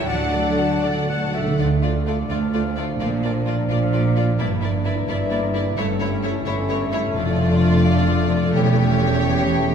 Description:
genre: classical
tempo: 86 BPM (dotted quarters)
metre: 6/8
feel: straight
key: D minor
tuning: A4 = 439 Hz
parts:
  - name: rich symphonic violin section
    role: melody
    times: 0.0-9.7 s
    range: C#5 to D5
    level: -32 LUFS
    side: left 1 dB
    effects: none
  - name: bright clarinet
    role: second line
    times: 0.0-1.6 s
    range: D5 to F#5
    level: -31 LUFS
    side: equal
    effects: none
  - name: mellow hollow concert flute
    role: second line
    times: 0.0-1.3 s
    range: F#5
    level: -30 LUFS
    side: left 4 dB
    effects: none
  - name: warm symphonic violin section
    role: second line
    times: 0.0-9.7 s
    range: E4 to A5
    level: -28 LUFS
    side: left 2 dB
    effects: none
  - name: warm symphonic viola section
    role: accompaniment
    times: 0.0-9.7 s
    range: F#3 to A4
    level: -29 LUFS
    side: right 2 dB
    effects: none
  - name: concert harp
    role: arpeggios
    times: 0.0-9.7 s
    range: E2 to A5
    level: -25 LUFS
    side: left 3 dB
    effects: none
  - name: rich symphonic cello section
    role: bass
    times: 0.0-9.7 s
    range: D2 to F#3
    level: -24 LUFS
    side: right 4 dB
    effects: none
  - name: warm symphonic double bass section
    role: bass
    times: 0.0-9.7 s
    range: E1 to D2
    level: -24 LUFS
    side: right 3 dB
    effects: none
  - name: mellow French horn section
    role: sustained chords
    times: 0.1-9.7 s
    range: E3 to D4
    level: -27 LUFS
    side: left 2 dB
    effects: none
  - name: timpani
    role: percussion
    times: 0.1-1.5 s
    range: D3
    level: -25 LUFS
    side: right 3 dB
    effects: none
room: wet recital hall reverb, RT60 1.6 s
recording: recorded in a church or concert hall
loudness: -18 LUFS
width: side -7 dB against mid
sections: 0.0-1.6 A section; 1.6-9.7 B section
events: timpani fill 0.1-1.6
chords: 0.1 D; 1.6 Dm; 3.0 Bb; 4.4 Em7b5/G; 5.8 A7/G; 7.2 Dm/F; 8.5 A7/E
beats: | 0.08 0.84 | 1.59 2.30 | 3.00 3.70 | 4.40 5.08 | 5.78 6.47 | 7.16 7.85 | 8.55 9.24

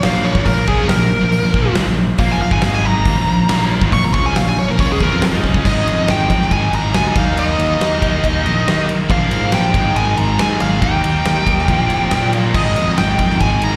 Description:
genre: hard rock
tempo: 139 BPM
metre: 4/4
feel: straight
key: unclear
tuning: A4 = 440 Hz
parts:
  - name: bluesy overdriven lead guitar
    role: melody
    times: 0.0-13.8 s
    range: Ab4 to Db6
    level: -21 LUFS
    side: equal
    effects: distortion, slapback echo
  - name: overdriven tonewheel organ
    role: sustained chords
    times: 0.0-13.8 s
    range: Ab3 to F5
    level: -33 LUFS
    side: equal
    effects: none
  - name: cranked stack guitar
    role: riff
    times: 0.0-13.8 s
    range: Ab2 to F4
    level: -27 LUFS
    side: equal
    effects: none
  - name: high-gain distorted guitar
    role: riff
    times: 0.0-13.8 s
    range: Ab2 to F4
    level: -27 LUFS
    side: equal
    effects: distortion
  - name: high-gain distorted guitar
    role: riff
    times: 0.0-13.8 s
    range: Ab2 to F4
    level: -28 LUFS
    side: equal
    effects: none
  - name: fuzz fingered electric bass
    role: bass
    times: 0.0-13.8 s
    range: F1 to Eb3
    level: -21 LUFS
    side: equal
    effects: overdrive
  - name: huge arena drum kit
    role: drums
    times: 0.0-13.7 s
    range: crash cymbal, hi-hat, kick drum, ride cymbal, snare drum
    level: -21 LUFS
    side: equal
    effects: none
room: light reverb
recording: live gig heard through the venue's PA, recital hall reverb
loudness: -15 LUFS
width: mono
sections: 0.0-5.7 A section; 5.7-13.8 B section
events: lead electric guitar solo 0.0-5.7; drum fill 5.4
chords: 0.0 Bb5; 2.5 Ab5; 3.1 Bb5; 5.7 Ab5; 7.2 Eb5; 9.1 Bb5; 9.7 Ab5; 10.8 Eb; 11.7 Bb5; 12.5 Ab5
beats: 0.04 | 0.47 0.90 1.33 1.77 | 2.20 2.63 3.06 3.50 | 3.93 4.36 4.79 5.22 | 5.65 6.08 6.51 6.95 | 7.38 7.81 8.24 8.67 | 9.10 9.53 9.96 10.39 | 10.82 11.26 11.69 12.12 | 12.55 12.98 13.41

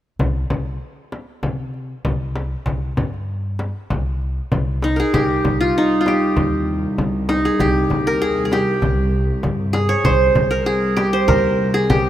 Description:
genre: Turkish makam ensemble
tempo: 98 BPM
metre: 4/4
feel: straight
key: C minor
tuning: A4 = 439 Hz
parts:
  - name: upright bass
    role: bass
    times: 0.2-12.1 s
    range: C2 to C3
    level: -23 LUFS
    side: equal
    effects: none
  - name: darbuka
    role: percussion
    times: 0.2-12.0 s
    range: none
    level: -25 LUFS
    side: left 1 dB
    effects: none
  - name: frame drum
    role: percussion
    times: 0.2-12.0 s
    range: none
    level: -25 LUFS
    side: left 1 dB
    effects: none
  - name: qanun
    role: melody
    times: 4.8-12.1 s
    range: Eb4 to Db5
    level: -17 LUFS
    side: right 1 dB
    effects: none
  - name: dark studio cello section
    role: drone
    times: 5.1-12.1 s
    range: C2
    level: -23 LUFS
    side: equal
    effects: none
room: light reverb, small room reverb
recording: rough home demo mix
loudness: -16 LUFS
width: side -12 dB against mid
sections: 0.2-5.1 A section; 5.1-12.1 B section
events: none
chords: none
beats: | 0.20 0.82 1.44 2.05 | 2.67 3.29 3.90 4.52 | 5.14 5.75 6.37 6.98 | 7.60 8.21 8.83 9.44 | 10.06 10.67 11.29 11.90

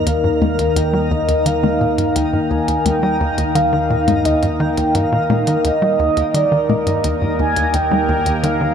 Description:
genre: ambient, sequencer-driven space music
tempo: 86 BPM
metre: 4/4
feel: straight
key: Eb major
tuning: A4 = 440 Hz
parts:
  - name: mellow horn-like synth lead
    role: melody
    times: 0.0-8.7 s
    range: D5 to Ab5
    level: -19 LUFS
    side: right 1 dB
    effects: wide subtle chorus, tape echo
  - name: sweeping resonant pad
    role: sustained chords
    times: 0.0-8.7 s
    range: Eb3 to Bb4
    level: -20 LUFS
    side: left 1 dB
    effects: chorus, phaser
  - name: tight sequencer bass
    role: riff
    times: 0.0-8.7 s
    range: Eb2 to G3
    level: -21 LUFS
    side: equal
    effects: tape echo
  - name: analog drone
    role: bass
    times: 0.0-8.7 s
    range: Eb2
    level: -26 LUFS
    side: equal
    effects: chorus, phaser
  - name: twinkling granular texture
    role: texture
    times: 0.0-8.7 s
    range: G3 to Bb4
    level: -28 LUFS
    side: left 1 dB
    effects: built-in reverb
  - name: minimal click drum kit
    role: percussion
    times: 0.1-8.6 s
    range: hi-hat, toms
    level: -24 LUFS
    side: left 6 dB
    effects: tape echo
room: wet huge ambient reverb, RT60 7.6 s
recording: none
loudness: -14 LUFS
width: side -7 dB against mid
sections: 0.0-8.7 A section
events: none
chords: 0.0 Eb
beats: | 0.07 0.76 1.46 2.16 | 2.86 3.55 4.25 4.95 | 5.65 6.34 7.04 7.74 | 8.44

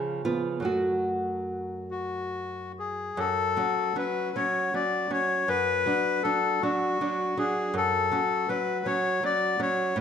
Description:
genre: romantic duo for bandoneon and classical guitar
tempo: 47-55 BPM (dotted quarters)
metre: 6/8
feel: rubato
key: F# minor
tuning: A4 = 440 Hz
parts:
  - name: nylon-string guitar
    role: accompaniment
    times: 0.0-10.0 s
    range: F#2 to G#4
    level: -29 LUFS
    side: right 2 dB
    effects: none
  - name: bandoneon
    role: melody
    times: 1.9-10.0 s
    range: F#4 to D5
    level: -26 LUFS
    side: left 4 dB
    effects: none
room: moderate recital hall reverb, RT60 1.5 s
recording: minimal, uncompressed stereo recording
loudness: -25 LUFS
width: side -8 dB against mid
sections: 0.0-3.2 A section; 3.2-10.0 B section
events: none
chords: 0.0 C#7; 0.7 F#m; 5.5 Bm/F#; 7.8 F#m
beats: | 0.67 1.92 | 3.18 4.35 | 5.48 6.63 | 7.76 8.87 | 9.97

